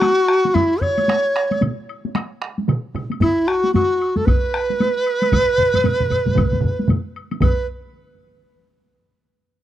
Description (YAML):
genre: japanese traditional, taiko drum ensemble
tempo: 114 BPM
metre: 4/4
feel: swing 60% on 16ths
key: B suspended pentatonic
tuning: A4 = 441 Hz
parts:
  - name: large dizi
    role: melody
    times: 0.0-7.7 s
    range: E4 to C#5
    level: -17 LUFS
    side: equal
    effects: none
  - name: solo taiko drums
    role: percussion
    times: 0.0-7.9 s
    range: none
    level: -23 LUFS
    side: left 2 dB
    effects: none
  - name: taiko ensemble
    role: percussion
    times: 0.0-7.7 s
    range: none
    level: -22 LUFS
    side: equal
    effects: none
  - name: woodblock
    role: percussion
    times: 0.0-7.7 s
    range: none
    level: -34 LUFS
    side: left 6 dB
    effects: none
  - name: taiko ensemble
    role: percussion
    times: 1.1-7.9 s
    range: none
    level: -23 LUFS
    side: right 2 dB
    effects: none
  - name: taiko ensemble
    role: percussion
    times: 3.2-7.7 s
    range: none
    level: -20 LUFS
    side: equal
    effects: none
room: studio ambience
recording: dry, close 1970s-style studio recording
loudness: -16 LUFS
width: side -12 dB against mid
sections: 0.0-7.4 A section; 7.4-9.5 B section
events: speeding up 0.0-9.5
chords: none